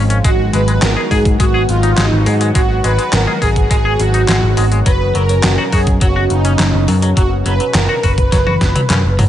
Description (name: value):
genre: synthwave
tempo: 104 BPM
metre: 4/4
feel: straight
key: G# minor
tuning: A4 = 442 Hz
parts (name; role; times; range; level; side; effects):
- phased analog pad; sustained chords; 0.0-9.3 s; B2 to F#4; -21 LUFS; left 1 dB; phaser, chorus, sidechain pumping
- twangy electric guitar; riff; 0.0-9.2 s; F#3 to G#4; -22 LUFS; left 3 dB; lush chorus, tape echo
- picked electric bass; bass; 0.0-9.3 s; F#1 to G#2; -15 LUFS; equal; tube saturation, sidechain pumping
- detuned 8-bit digital drum machine; drums; 0.1-9.3 s; handclaps, hi-hat, snare drum, toms; -18 LUFS; equal; studio reverb, gated reverb
- soft supersaw; melody; 0.2-9.1 s; D#4 to B4; -18 LUFS; right 2 dB; tape echo
- electronic kick drum; drums; 0.2-8.7 s; none; -14 LUFS; equal; studio reverb
room: digital ambience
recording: nothing above 10.3 kHz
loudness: -11 LUFS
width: side -11 dB against mid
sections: 0.0-9.3 A section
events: drum fill 8.3-9.3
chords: 0.2 G#m7; 4.9 F#sus4